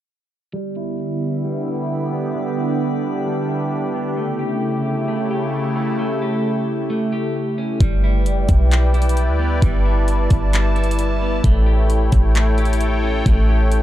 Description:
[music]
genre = hip hop, atmospheric cloud-rap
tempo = 132 BPM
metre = 4/4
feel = half-time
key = G lydian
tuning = A4 = 439 Hz
[part]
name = sweeping resonant pad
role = sustained chords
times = 0.5-13.8 s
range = C#3 to A5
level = -22 LUFS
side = equal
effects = chorus, sidechain pumping, low-pass filter
[part]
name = clean electric guitar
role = arpeggios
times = 0.5-13.8 s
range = G3 to G4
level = -25 LUFS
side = right 1 dB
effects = low-pass filter, tape echo
[part]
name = drifting glass-harmonics texture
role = texture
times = 1.4-7.8 s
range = G4 to B5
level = -35 LUFS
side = left 2 dB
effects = chorus, built-in reverb
[part]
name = clean 808-style bass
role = bass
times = 7.8-13.8 s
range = F#1 to D2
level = -16 LUFS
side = equal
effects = none
[part]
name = smooth R&B drum kit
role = drums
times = 7.8-13.8 s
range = handclaps, hi-hat, kick drum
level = -19 LUFS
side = equal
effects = none
[sound]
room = little or no reverb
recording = dark, warm production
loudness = -16 LUFS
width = side -13 dB against mid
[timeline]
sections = 0.5-7.8 A section; 7.8-13.8 B section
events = filter sweep 0.5-7.8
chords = 0.5 G6; 4.2 A7; 7.8 G6; 11.4 A7

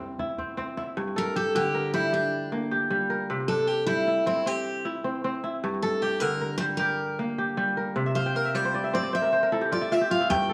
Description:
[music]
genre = west african traditional, West African string and xylophone music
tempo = 103 BPM (dotted quarters)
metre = 12/8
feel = straight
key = G dorian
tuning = A4 = 441 Hz
[part]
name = kora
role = arpeggios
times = 0.0-10.5 s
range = G2 to G5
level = -29 LUFS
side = equal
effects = slapback echo
[part]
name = djembe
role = percussion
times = 0.2-1.0, 10.3-10.4 s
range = none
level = -42 LUFS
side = equal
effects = none
[part]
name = picked steel-string acoustic guitar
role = melody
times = 1.2-10.5 s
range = D4 to G5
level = -29 LUFS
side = equal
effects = none
[sound]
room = moderate recital hall reverb, RT60 1.4 s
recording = none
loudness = -27 LUFS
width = mono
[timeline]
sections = 1.0-10.5 A section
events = drum fill 0.2-1.0; steel-string acoustic guitar solo 1.0-10.5; kora fill 8.1-10.3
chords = 0.0 C; 1.0 Gm; 3.3 C; 5.6 Gm; 8.0 C

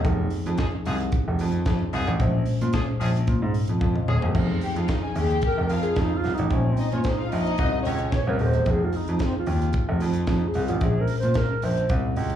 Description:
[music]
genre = disco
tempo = 111 BPM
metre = 4/4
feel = straight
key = unclear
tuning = A4 = 440 Hz
[part]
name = mellow tine electric piano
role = accompaniment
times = 0.0-12.4 s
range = Bb2 to F5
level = -29 LUFS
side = left 2 dB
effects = medium stereo tremolo, slapback echo
[part]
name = tight funk drum kit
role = drums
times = 0.0-12.4 s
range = crash cymbal, hi-hat, kick drum, snare drum, toms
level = -28 LUFS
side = equal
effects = none
[part]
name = warm grand piano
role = bass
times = 0.1-12.4 s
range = Eb1 to Bb2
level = -24 LUFS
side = right 1 dB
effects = none
[part]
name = clear horn section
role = stabs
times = 0.6-4.3 s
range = F3 to Ab4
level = -33 LUFS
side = left 2 dB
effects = slapback echo
[part]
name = warm studio string section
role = second line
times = 4.6-8.4 s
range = C4 to Ab5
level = -30 LUFS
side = left 3 dB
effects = slapback echo
[part]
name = bright reedy wooden-headed alto flute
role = melody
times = 5.2-11.9 s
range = C4 to Db5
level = -28 LUFS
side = right 1 dB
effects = slapback echo
[sound]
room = little or no reverb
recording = live gig heard through the venue's PA, club reverb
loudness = -21 LUFS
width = side -10 dB against mid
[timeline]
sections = 0.0-4.4 A section; 4.4-12.4 B section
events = drum fill 3.8-4.4; alto flute solo 4.4-12.4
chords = 0.0 Fm7; 2.2 Bbm9; 4.4 Fm7; 6.5 Bbm9; 8.7 Fm7; 10.8 Bbm9

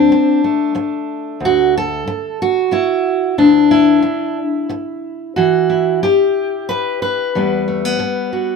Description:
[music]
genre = folk, solo fingerstyle acoustic guitar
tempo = 92 BPM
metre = 3/4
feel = straight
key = D mixolydian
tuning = A4 = 441 Hz
[part]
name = fingerpicked steel-string acoustic guitar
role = solo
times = 0.0-8.6 s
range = D2 to B4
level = -13 LUFS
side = left 1 dB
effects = none
[sound]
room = light reverb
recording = minimal, uncompressed stereo recording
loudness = -13 LUFS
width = side -5 dB against mid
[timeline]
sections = 0.0-8.6 A section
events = none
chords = 0.0 Dadd9; 5.4 Emadd9

